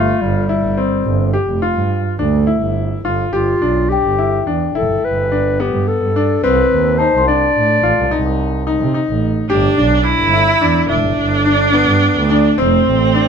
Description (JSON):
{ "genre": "contemporary instrumental, chamber music in an uneven meter", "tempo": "214 BPM (eighths)", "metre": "11/8", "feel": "straight", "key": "G mixolydian", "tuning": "A4 = 440 Hz", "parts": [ { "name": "warm clarinet", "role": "melody", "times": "0.0-8.4 s", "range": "G3 to D5", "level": "-17 LUFS", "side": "left 1 dB", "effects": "none" }, { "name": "bright grand piano", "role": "arpeggios", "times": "0.0-13.3 s", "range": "B3 to G4", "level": "-18 LUFS", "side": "left 4 dB", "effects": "none" }, { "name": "warm double bass", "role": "bass", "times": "0.0-13.2 s", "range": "E1 to C3", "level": "-18 LUFS", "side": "right 4 dB", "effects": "none" }, { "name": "large celesta", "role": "texture", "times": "3.9-9.1 s", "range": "G5 to C6", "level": "-22 LUFS", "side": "left 9 dB", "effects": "none" }, { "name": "bright viola", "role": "second line", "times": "9.5-13.3 s", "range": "C4 to E4", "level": "-14 LUFS", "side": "right 2 dB", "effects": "none" } ], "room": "little or no reverb", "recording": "close, detailed microphones", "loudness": "-13 LUFS", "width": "side -7 dB against mid", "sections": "0.0-3.3 A section; 3.3-13.3 B section", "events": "none", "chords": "0.2 G7sus4; 3.3 G; 6.4 Cmadd9; 9.5 G; 12.6 F", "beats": "| 0.21 0.49 0.77 1.05 1.33 1.62 1.90 2.18 2.47 2.76 3.04 | 3.33 3.62 3.90 4.19 4.47 4.75 5.03 5.31 5.59 5.88 6.16 | 6.43 6.71 6.99 7.27 7.55 7.83 8.11 8.39 8.67 8.94 9.22 | 9.50 9.78 10.06 10.34 10.62 10.89 11.17 11.45 11.73 12.02 12.30 | 12.58 12.86 13.14" }